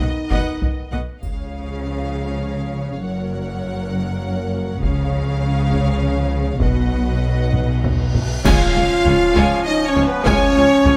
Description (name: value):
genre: cinematic, epic orchestral film score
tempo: 100 BPM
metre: 3/4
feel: straight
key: Db mixolydian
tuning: A4 = 440 Hz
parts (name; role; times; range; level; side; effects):
- rich symphonic violin section; melody; 0.0-11.0 s; Cb5 to Gb5; -30 LUFS; equal; none
- rich studio violin section; second line; 0.0-10.9 s; Db5 to Ab5; -32 LUFS; equal; none
- warm symphonic viola section; accompaniment; 0.0-10.9 s; Ab3 to Eb5; -33 LUFS; equal; none
- dark French horn section; sustained chords; 0.0-11.0 s; F3 to F4; -24 LUFS; equal; none
- warm trombone section; sustained chords; 0.0-0.9, 8.5-11.0 s; Eb3 to Db4; -29 LUFS; equal; none
- warm studio double bass section; bass; 0.0-10.9 s; Gb1 to Db2; -25 LUFS; equal; none
- warm symphonic cello section; bass; 0.0-10.9 s; Db2 to Db3; -26 LUFS; equal; none
- taiko ensemble; drums; 0.0-11.0 s; none; -25 LUFS; equal; none
- triangle, cymbal swell, clash cymbals and concert bass drum; percussion; 1.2-9.6 s; none; -29 LUFS; equal; none
- cymbal swell and impact; sound effects; 7.9-10.3 s; none; -34 LUFS; equal; none
- bright concert flute; second line; 8.4-11.0 s; Cb5 to F5; -27 LUFS; equal; none
room: light reverb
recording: none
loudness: -19 LUFS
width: mono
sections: 0.0-1.2 A section; 1.2-8.5 B section; 8.5-11.0 C section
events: drum fill 7.5-8.5; cymbal swell 7.9-8.5; band accent 8.5-9.1; impact 8.5-10.3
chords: 0.0 Cb; 1.2 Db; 3.0 Gb; 4.8 Db; 6.6 Cb; 8.5 Db